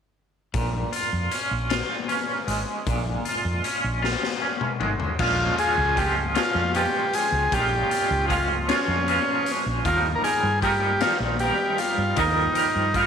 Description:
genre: psychedelic rock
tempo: 52 BPM (dotted quarters)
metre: 6/8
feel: straight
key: Bb dorian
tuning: A4 = 443 Hz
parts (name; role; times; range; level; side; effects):
- twangy electric guitar; riff; 0.5-13.1 s; Bb2 to Bb4; -25 LUFS; right 2 dB; tremolo, double-tracked left and right
- woody fretless electric bass; bass; 0.5-13.1 s; Ab1 to G2; -27 LUFS; right 1 dB; none
- raw garage drum kit; drums; 0.5-13.1 s; crash cymbal, hi-hat, kick drum, snare drum, toms; -29 LUFS; left 6 dB; none
- combo organ; melody; 5.2-13.1 s; Db4 to Bb4; -24 LUFS; equal; spring reverb, slapback echo
room: light reverb, studio reverb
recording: 1960s-style stereo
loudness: -21 LUFS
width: side -7 dB against mid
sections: 0.5-5.2 A section; 5.2-13.1 B section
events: drum fill 4.0-5.2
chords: 0.5 Bbm7; 9.8 Ebadd9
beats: | 0.54 1.70 | 2.87 4.03 | 5.19 6.36 | 7.52 8.68 | 9.85 11.01 | 12.17

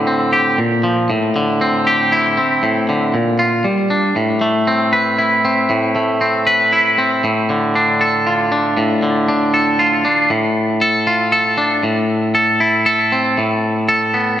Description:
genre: rock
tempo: 117 BPM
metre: 3/4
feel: straight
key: unclear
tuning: A4 = 440 Hz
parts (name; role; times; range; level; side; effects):
- twangy electric guitar; solo; 0.0-14.4 s; A2 to B4; -13 LUFS; equal; digital delay
room: wet scoring stage reverb, RT60 1.6 s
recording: none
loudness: -13 LUFS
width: side -11 dB against mid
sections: 0.0-10.3 A section; 10.3-14.4 B section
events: none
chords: 0.0 Cadd9/A; 0.6 Bb5; 1.1 Cadd9/A; 3.1 Bb5; 3.7 G5; 4.2 Amadd9; 7.2 Dm/A; 11.8 Am; 13.4 Gadd9/A (rootless)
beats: 0.08 0.59 | 1.10 1.61 2.12 | 2.64 3.15 3.66 | 4.17 4.68 5.19 | 5.71 6.22 6.73 | 7.24 7.75 8.26 | 8.77 9.29 9.80 | 10.31 10.82 11.33 | 11.84 12.36 12.87 | 13.38 13.89

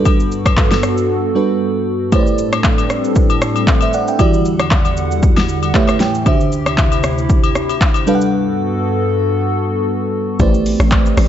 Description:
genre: amapiano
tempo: 116 BPM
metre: 4/4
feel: swing 55% on 16ths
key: A dorian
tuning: A4 = 440 Hz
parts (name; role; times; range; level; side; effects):
- crystalline FM electric piano; accompaniment; 0.0-11.3 s; D3 to G5; -18 LUFS; right 2 dB; chorus
- hollow soft pad; sustained chords; 0.0-11.3 s; D2 to F#5; -19 LUFS; left 1 dB; chorus, sidechain pumping
- deep house drum kit; drums; 0.1-11.3 s; handclaps, hi-hat, kick drum, rim click, shaker, snare drum; -15 LUFS; equal; overdrive
- agogo bells and woodblock; percussion; 0.1-8.1 s; none; -24 LUFS; left 11 dB; none
- hollow log drum bass; bass; 10.4-11.3 s; A1; -15 LUFS; equal; none
room: light reverb, digital ambience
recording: dark, warm production, nothing above 7.7 kHz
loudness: -12 LUFS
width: side -10 dB against mid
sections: 0.0-10.4 A section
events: break 1.1-2.1, 8.3-10.4; FM electric piano fill 5.5-6.3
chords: 0.0 Gmaj9; 2.1 Am11; 4.2 Em9; 5.7 A7; 6.3 D9sus4; 8.1 Gmaj9; 10.4 Am11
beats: | 0.05 0.57 1.09 1.60 | 2.12 2.64 3.16 3.67 | 4.19 4.71 5.23 5.74 | 6.26 6.78 7.29 7.81 | 8.33 8.85 9.36 9.88 | 10.40 10.92

